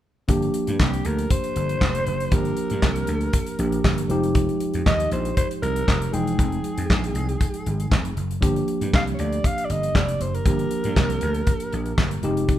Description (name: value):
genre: early-eighties boogie funk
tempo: 118 BPM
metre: 4/4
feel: straight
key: unclear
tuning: A4 = 440 Hz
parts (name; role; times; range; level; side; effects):
- tine electric piano; accompaniment; 0.3-12.6 s; F3 to G5; -26 LUFS; right 1 dB; none
- vintage slap bass; bass; 0.3-12.6 s; E1 to G2; -26 LUFS; equal; none
- damped 70s drum kit; drums; 0.3-12.6 s; handclaps, hi-hat, kick drum, snare drum; -22 LUFS; equal; none
- raspy alto saxophone; melody; 0.8-12.2 s; G4 to F5; -28 LUFS; equal; none
room: light reverb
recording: band playing live in one room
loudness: -20 LUFS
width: side -12 dB against mid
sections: 0.3-12.6 A section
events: none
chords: 0.3 Gm7; 4.1 Fm9; 8.4 Gm7